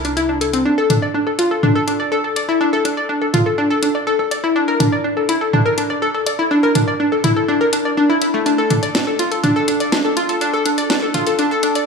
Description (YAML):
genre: melodic techno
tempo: 123 BPM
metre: 4/4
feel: straight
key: D minor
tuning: A4 = 439 Hz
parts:
  - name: analog pluck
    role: arpeggios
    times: 0.0-11.9 s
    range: A3 to D5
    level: -16 LUFS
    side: left 1 dB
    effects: chorus, tape echo
  - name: plucky analog bass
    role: bass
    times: 0.0-0.6 s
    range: C2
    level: -28 LUFS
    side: left 1 dB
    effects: none
  - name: house drum kit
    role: drums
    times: 0.0-11.8 s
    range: hi-hat, snare drum, toms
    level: -20 LUFS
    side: equal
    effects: none
room: moderate lush hall reverb, RT60 1.9 s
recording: high-pass filter, studio reverb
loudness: -15 LUFS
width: side -5 dB against mid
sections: 0.7-11.9 A section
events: build-up 0.7-11.9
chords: 0.0 C; 0.7 D5; 4.6 Asus4; 8.5 D5